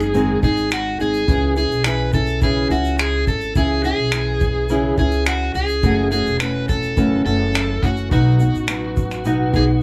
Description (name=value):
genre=acoustic pop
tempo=105 BPM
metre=4/4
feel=straight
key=C# minor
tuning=A4 = 440 Hz
part: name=overdriven slide guitar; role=melody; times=0.0-9.8 s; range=F#4 to B4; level=-25 LUFS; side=equal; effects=none
part: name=nylon-string guitar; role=accompaniment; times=0.0-9.8 s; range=F#2 to G#4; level=-23 LUFS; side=equal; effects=none
part: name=upright bass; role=bass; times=0.0-9.8 s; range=E1 to C#2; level=-24 LUFS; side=equal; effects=none
part: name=cloth-damped thuddy drum kit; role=drums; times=0.0-9.7 s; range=finger snaps, kick drum, shaker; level=-24 LUFS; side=equal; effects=none
room=light reverb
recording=band playing live in one room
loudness=-19 LUFS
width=mono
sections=0.0-9.8 A section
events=none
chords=0.0 G#; 1.3 C#m; 5.8 F#m7; 8.1 B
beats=0.14 0.71 | 1.28 1.85 2.42 2.99 | 3.56 4.13 4.70 5.26 | 5.83 6.40 6.97 7.54 | 8.11 8.68 9.25 9.82